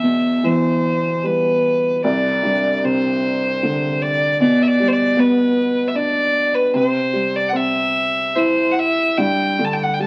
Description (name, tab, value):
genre	celtic folk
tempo	75 BPM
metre	3/4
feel	rubato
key	unclear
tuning	A4 = 440 Hz
part	clear fiddle	melody	0.0-10.1 s	B4 to A5	-21 LUFS	equal	none
part	dark upright piano	accompaniment	0.0-10.1 s	C2 to E4	-21 LUFS	equal	none
room	moderate club reverb, RT60 0.9 s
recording	very old 78 rpm record, vinyl crackle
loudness	-18 LUFS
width	mono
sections	0.0-10.1 A section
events	none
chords	0.0 Em; 2.0 Csus2; 4.4 G/B; 6.7 C; 9.2 G5